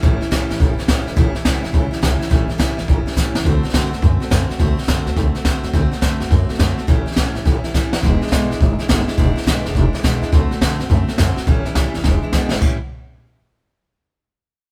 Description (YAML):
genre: rockabilly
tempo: 209 BPM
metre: 4/4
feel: swing 65% on 8ths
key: A mixolydian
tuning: A4 = 440 Hz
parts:
  - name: picked steel-string acoustic guitar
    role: accompaniment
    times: 0.0-12.8 s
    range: E2 to F#4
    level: -25 LUFS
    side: equal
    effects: none
  - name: upright bass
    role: bass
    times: 0.0-12.8 s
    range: E1 to F#2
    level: -23 LUFS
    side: equal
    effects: none
  - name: jazz brush drum kit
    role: drums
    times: 0.0-12.7 s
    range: crash cymbal, hi-hat, kick drum, snare drum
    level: -20 LUFS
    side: equal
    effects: none
room: light reverb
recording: band playing live in one room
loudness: -18 LUFS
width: mono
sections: 0.0-12.6 A section; 12.6-13.8 B section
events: drum fill 3.2, 7.7, 12.0-12.6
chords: 0.0 A7; 3.5 D7; 6.9 A7; 8.0 E7; 10.3 D7; 11.5 A7; 12.0 E7; 12.6 A7